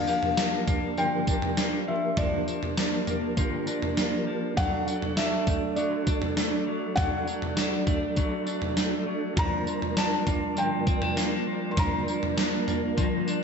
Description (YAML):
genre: dream pop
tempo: 100 BPM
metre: 4/4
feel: straight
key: unclear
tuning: A4 = 444 Hz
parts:
  - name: felt-muted upright piano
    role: melody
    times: 0.0-12.9 s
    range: D5 to C6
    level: -31 LUFS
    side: left 2 dB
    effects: tape echo
  - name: mellow electric guitar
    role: accompaniment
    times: 0.0-13.4 s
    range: G2 to Bb4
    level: -35 LUFS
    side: right 2 dB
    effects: tremolo, lush chorus
  - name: mellow tonewheel organ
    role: sustained chords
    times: 0.0-13.4 s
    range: F3 to D5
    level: -32 LUFS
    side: right 2 dB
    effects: chorus vibrato, fast rotary speaker
  - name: clean electric guitar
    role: arpeggios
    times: 0.0-13.4 s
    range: F3 to D4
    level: -31 LUFS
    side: left 3 dB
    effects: lush chorus, tape echo
  - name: gated 80s digital drum machine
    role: drums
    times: 0.1-13.4 s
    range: kick drum, snare drum, tambourine, toms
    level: -28 LUFS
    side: right 1 dB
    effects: gated reverb, gated reverb snare, overdrive
room: wet plate reverb, RT60 2.1 s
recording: dreamy mix soaked in reverb, nothing above 7.9 kHz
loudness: -24 LUFS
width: side -6 dB against mid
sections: 0.0-13.4 A section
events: none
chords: 0.0 Gm7; 4.6 D/F#; 9.4 Gm7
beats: 0.38 0.98 1.58 | 2.18 2.78 3.38 3.98 | 4.58 5.18 5.78 6.38 | 6.98 7.58 8.18 8.78 | 9.38 9.98 10.58 11.18 | 11.78 12.38 12.98